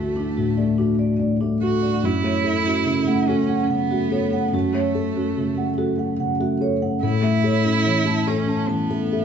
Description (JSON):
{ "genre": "neoclassical piano and strings", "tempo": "72 BPM", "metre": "3/4", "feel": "rubato", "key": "unclear", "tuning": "A4 = 440 Hz", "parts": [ { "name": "warm cello", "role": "second line", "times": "0.0-9.2 s", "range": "A3 to F#4", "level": "-26 LUFS", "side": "right 6 dB", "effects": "none" }, { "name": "felt-muted upright piano", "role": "accompaniment", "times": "0.0-9.2 s", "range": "D2 to A4", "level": "-20 LUFS", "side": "left 2 dB", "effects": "none" }, { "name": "vibraphone with soft mallets", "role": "arpeggios", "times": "0.0-9.2 s", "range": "D4 to A5", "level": "-27 LUFS", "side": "right 5 dB", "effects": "none" } ], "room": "moderate large studio reverb, RT60 1.4 s", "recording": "band playing live in one room, nothing above 8.0 kHz", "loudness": "-19 LUFS", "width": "side -7 dB against mid", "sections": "0.0-9.2 A section", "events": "none", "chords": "0.0 D; 2.0 F#m; 7.0 A" }